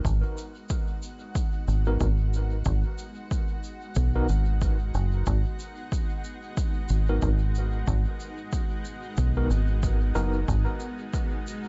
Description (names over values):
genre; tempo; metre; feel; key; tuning
ambient dub; 92 BPM; 4/4; swing 59% on 16ths; G# minor; A4 = 441 Hz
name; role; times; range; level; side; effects
granular cloud pad; sustained chords; 0.0-11.7 s; G#3 to F#5; -41 LUFS; equal; built-in reverb
deep dub fingered electric bass; bass; 0.0-10.7 s; F#1 to B1; -26 LUFS; equal; none
electronic kick drum; drums; 0.0-11.3 s; none; -31 LUFS; equal; overdrive
shaker; drums; 0.1-11.6 s; none; -50 LUFS; equal; dub echo
overdriven tine electric piano; stabs; 1.9-10.4 s; B3 to A#4; -38 LUFS; equal; fast tremolo, dub echo
room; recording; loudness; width
studio ambience; nothing above 7.7 kHz; -27 LUFS; mono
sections
0.0-11.7 A section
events
fade-in on ambient pad 0.0-11.7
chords
0.0 G#m7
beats
| 0.05 0.70 1.35 2.01 | 2.66 3.31 3.96 4.62 | 5.27 5.92 6.57 7.22 | 7.88 8.53 9.18 9.83 | 10.48 11.14